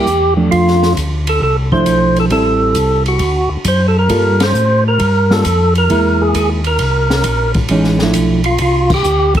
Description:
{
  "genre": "soul jazz organ trio",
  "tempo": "134 BPM",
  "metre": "4/4",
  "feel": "swing 68% on 8ths",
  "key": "unclear",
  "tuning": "A4 = 442 Hz",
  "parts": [
    { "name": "percussive tonewheel organ", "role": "melody", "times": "0.0-9.4 s", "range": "F4 to C5", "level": "-15 LUFS", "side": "right 1 dB", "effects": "slow rotary speaker, overdrive, plate reverb" },
    { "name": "hollow-body jazz guitar", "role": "accompaniment", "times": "0.0-8.4 s", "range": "E3 to A4", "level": "-15 LUFS", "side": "right 2 dB", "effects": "none" },
    { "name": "mellow tonewheel organ", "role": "bass", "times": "0.1-9.4 s", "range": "A1 to A2", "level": "-16 LUFS", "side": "left 1 dB", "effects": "slow rotary speaker" },
    { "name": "open jazz drum kit", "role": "drums", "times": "0.1-9.4 s", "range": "crash cymbal, hi-hat, kick drum, ride cymbal, snare drum", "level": "-21 LUFS", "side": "equal", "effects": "none" }
  ],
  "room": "moderate club reverb, RT60 0.7 s",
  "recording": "heavily compressed radio sound",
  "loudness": "-11 LUFS",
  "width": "side -10 dB against mid",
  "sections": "0.0-9.4 A section",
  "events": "band accent 4.3, 8.8",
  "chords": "0.0 C (rootless); 0.5 F6; 2.3 Am7; 3.2 D; 4.1 Gm9; 5.9 C7alt; 7.7 Fmaj13",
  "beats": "0.07 | 0.51 0.96 1.41 1.86 | 2.31 2.76 3.21 3.66 | 4.11 4.56 5.01 5.46 | 5.90 6.35 6.80 7.25 | 7.70 8.15 8.59 9.04"
}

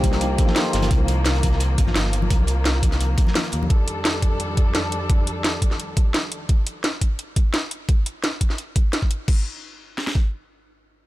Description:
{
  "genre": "liquid drum and bass",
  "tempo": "172 BPM",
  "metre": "4/4",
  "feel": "straight",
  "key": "unclear",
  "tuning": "A4 = 442 Hz",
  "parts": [
    { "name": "tine electric piano", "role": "accompaniment", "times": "0.0-1.1 s", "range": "F3 to A4", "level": "-30 LUFS", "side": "right 1 dB", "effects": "low-pass filter, digital delay" },
    { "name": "muted studio string section", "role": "sustained chords", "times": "0.0-6.5 s", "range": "F2 to A4", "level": "-28 LUFS", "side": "left 1 dB", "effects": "none" },
    { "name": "vibraphone with soft mallets", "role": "arpeggios", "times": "0.0-0.9 s", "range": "G4 to C6", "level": "-31 LUFS", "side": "left 2 dB", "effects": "ping-pong delay" },
    { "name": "smooth synth bass", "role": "bass", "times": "0.0-3.7 s", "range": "G1 to Eb2", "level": "-21 LUFS", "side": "equal", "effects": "none" },
    { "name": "cloth-damped thuddy drum kit", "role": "drums", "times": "0.0-3.6 s", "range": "hi-hat, snare drum", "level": "-33 LUFS", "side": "right 2 dB", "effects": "high-pass filter on hats, high-pass filter on snare, high-pass filter on room" },
    { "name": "drum and bass drum kit", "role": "drums", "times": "0.0-10.2 s", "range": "kick drum, snare drum", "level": "-19 LUFS", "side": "equal", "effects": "overdrive" },
    { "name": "drum and bass drum kit", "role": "drums", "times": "0.0-9.4 s", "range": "crash cymbal, hi-hat, snare drum", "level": "-25 LUFS", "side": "equal", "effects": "none" },
    { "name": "congas", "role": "percussion", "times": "0.0-3.7 s", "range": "none", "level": "-32 LUFS", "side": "left 3 dB", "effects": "none" }
  ],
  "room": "studio ambience",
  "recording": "faint mains hum",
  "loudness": "-19 LUFS",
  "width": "side -17 dB against mid",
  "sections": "0.0-9.3 A section; 9.3-11.1 B section",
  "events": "none",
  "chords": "0.0 Cm11; 3.7 F13; 9.3 N.C.",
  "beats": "0.21 0.56 | 0.91 1.26 1.61 1.96 | 2.31 2.65 3.00 3.35 | 3.70 4.05 4.40 4.75 | 5.09 5.44 5.79 6.14 | 6.49 6.84 7.19 7.54 | 7.89 8.23 8.58 8.93 | 9.28 9.63 9.98"
}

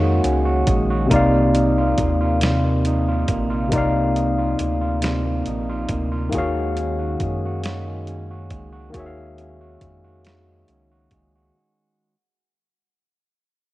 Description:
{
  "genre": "slow six-eight R&B",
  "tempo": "46 BPM (dotted quarters)",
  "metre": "6/8",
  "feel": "straight",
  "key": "unclear",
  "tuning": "A4 = 438 Hz",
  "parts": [
    { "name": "electric guitar at the edge of break-up", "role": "second line", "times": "0.0-12.1 s", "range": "C3 to Gb4", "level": "-25 LUFS", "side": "right 3 dB", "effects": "cassette tape" },
    { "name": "barky tine electric piano", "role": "accompaniment", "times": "0.0-11.6 s", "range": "C3 to Gb5", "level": "-22 LUFS", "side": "left 2 dB", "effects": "overdrive, cassette tape" },
    { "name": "rubbery square bass", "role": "bass", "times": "0.0-11.5 s", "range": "Bb1 to Gb2", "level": "-24 LUFS", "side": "equal", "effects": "none" },
    { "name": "dusty soul sampler-style drum kit", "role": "drums", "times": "0.2-11.3 s", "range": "hi-hat, kick drum, snare drum", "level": "-25 LUFS", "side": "equal", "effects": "none" }
  ],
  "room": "light reverb",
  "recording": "home recording on cassette",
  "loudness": "-18 LUFS",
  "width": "side -17 dB against mid",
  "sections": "0.0-11.5 A section",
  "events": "fade-out 1.1-11.5",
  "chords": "0.0 Ebm11; 1.1 Cm11; 6.3 Ebm11",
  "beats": "| 1.11 2.42 | 3.72 5.02 | 6.33 7.63 | 8.94 10.24"
}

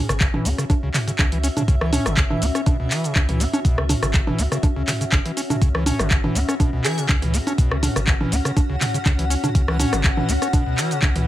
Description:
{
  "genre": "acid house",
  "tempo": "122 BPM",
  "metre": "4/4",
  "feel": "swing 54% on 16ths",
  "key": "C# minor",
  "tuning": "A4 = 440 Hz",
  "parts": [
    { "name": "granular cloud pad", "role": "texture", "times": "0.0-11.3 s", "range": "C#4 to F#5", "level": "-28 LUFS", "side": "left 2 dB", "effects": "built-in reverb, sidechain pumping" },
    { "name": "acid bass, square", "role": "riff", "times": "0.1-11.3 s", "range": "B2 to C#4", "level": "-25 LUFS", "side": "equal", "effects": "overdrive, sidechain pumping, tape echo" },
    { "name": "warm sub bass", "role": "bass", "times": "0.1-11.3 s", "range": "G#1 to C#2", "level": "-24 LUFS", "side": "equal", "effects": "sidechain pumping" },
    { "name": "punchy analog drum machine", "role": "drums", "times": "0.1-11.2 s", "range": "cabasa, congas, handclaps, hi-hat, rim click, toms", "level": "-23 LUFS", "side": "right 1 dB", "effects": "none" },
    { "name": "electronic kick drum", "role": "drums", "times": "0.2-11.1 s", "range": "none", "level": "-18 LUFS", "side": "equal", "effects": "overdrive" },
    { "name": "airy dreamy lead", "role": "melody", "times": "6.8-7.0 s", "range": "G#4", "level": "-31 LUFS", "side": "equal", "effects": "chorus, tape echo" }
  ],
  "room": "light reverb",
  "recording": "none",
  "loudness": "-18 LUFS",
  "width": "side -14 dB against mid",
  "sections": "0.0-11.3 A section",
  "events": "none",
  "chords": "0.0 C#m",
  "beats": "0.21 0.70 1.19 | 1.68 2.17 2.67 3.16 | 3.65 4.14 4.63 5.12 | 5.62 6.11 6.60 7.09 | 7.58 8.07 8.57 9.06 | 9.55 10.04 10.53 11.03"
}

